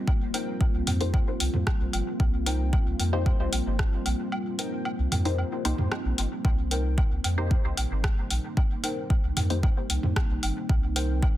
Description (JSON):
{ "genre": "dub techno", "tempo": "113 BPM", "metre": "4/4", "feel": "straight", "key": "C minor", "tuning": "A4 = 440 Hz", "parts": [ { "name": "deep dark ambient pad", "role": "sustained chords", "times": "0.0-11.4 s", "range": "G3 to F4", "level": "-33 LUFS", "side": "equal", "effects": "chorus, built-in reverb, sidechain pumping" }, { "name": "electronic kick drum", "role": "drums", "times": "0.1-11.3 s", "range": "none", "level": "-24 LUFS", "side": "equal", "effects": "none" }, { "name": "electronic woodblock and toms", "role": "percussion", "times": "0.1-11.3 s", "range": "none", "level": "-36 LUFS", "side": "right 1 dB", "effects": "overdrive, sidechain pumping on perc, sidechain pumping on toms, dub echo" }, { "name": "warbly dusty pluck", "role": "riff", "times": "0.3-11.1 s", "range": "Eb4 to G5", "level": "-38 LUFS", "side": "left 2 dB", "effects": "lush chorus, sidechain pumping, dub echo" }, { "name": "deep house drum kit", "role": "drums", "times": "0.3-11.1 s", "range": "hi-hat, rim click", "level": "-31 LUFS", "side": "left 1 dB", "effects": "soft clipping on snare" }, { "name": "soft dub sub bass", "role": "bass", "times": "0.7-11.3 s", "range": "G1 to F2", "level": "-27 LUFS", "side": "equal", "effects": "tube saturation, sidechain pumping" }, { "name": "filtered dub chord stab", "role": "stabs", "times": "1.0-9.8 s", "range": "Bb3 to C5", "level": "-34 LUFS", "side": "left 2 dB", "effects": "phaser, sidechain pumping, dub echo" } ], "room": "little or no reverb", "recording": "dense, heavily limited modern master", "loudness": "-24 LUFS", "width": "side -14 dB against mid", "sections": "0.0-11.4 A section", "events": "break 4.3-6.4", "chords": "0.0 Cm7" }